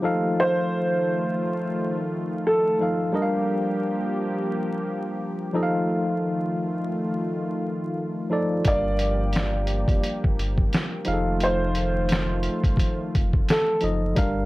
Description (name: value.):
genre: lo-fi hip hop.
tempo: 87 BPM.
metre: 4/4.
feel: swing 58% on 16ths.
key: unclear.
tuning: A4 = 440 Hz.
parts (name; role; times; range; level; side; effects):
tine electric piano; accompaniment; 0.0-14.5 s; F3 to F5; -26 LUFS; left 1 dB; medium stereo tremolo, cassette tape, low-pass filter.
warm analog pad; sustained chords; 0.0-14.1 s; Eb3 to G4; -31 LUFS; equal; chorus, low-pass filter.
dark upright piano; melody; 0.4-2.8, 8.7-13.8 s; A4 to D5; -25 LUFS; right 1 dB; low-pass filter.
lo-fi sampler-style drum kit; drums; 8.6-14.4 s; finger snaps, hi-hat, kick drum, snare drum; -23 LUFS; equal; none.
warm sub bass; bass; 8.7-14.5 s; F1 to G1; -27 LUFS; equal; tube saturation.
room: light reverb.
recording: dry, gritty hardware recording, vinyl crackle.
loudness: -22 LUFS.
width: side -19 dB against mid.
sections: 0.0-14.5 A section.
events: none.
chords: 0.0 F7; 3.1 Gm7; 5.5 F7; 8.7 Gm7; 11.1 F7.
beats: | 0.38 1.07 1.76 2.45 | 3.14 3.83 4.52 5.21 | 5.89 6.58 7.28 7.96 | 8.65 9.34 10.03 10.72 | 11.41 12.10 12.79 13.48 | 14.17.